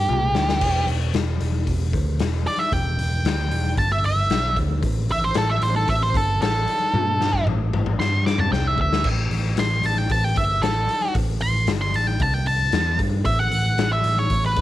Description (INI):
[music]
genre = blues rock power trio and southern rock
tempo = 114 BPM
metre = 4/4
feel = straight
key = unclear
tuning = A4 = 440 Hz
[part]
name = octave-fuzz lead guitar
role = melody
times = 0.0-14.6 s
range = G4 to D6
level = -23 LUFS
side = right 1 dB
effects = distortion, slapback echo
[part]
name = picked electric bass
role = bass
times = 0.0-14.6 s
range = E1 to G2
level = -23 LUFS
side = right 1 dB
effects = none
[part]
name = raw garage drum kit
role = drums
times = 0.1-14.6 s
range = crash cymbal, hi-hat, kick drum, snare drum, toms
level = -25 LUFS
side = left 3 dB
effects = none
[sound]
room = small room ambience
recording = 1960s-style stereo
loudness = -19 LUFS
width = side -14 dB against mid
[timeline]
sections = 0.0-9.0 A section; 9.0-14.6 A section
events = lead electric guitar solo 0.0-14.6; drum fill 0.1-0.6, 6.9-9.0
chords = 0.1 Csus2; 0.6 Em7; 3.8 Emadd11/G; 4.3 E5; 4.8 N.C.; 6.9 Gsus2; 7.5 N.C.; 8.0 Gsus24; 8.5 Cadd9; 9.0 Gsus24; 12.2 Am7/C; 12.7 A5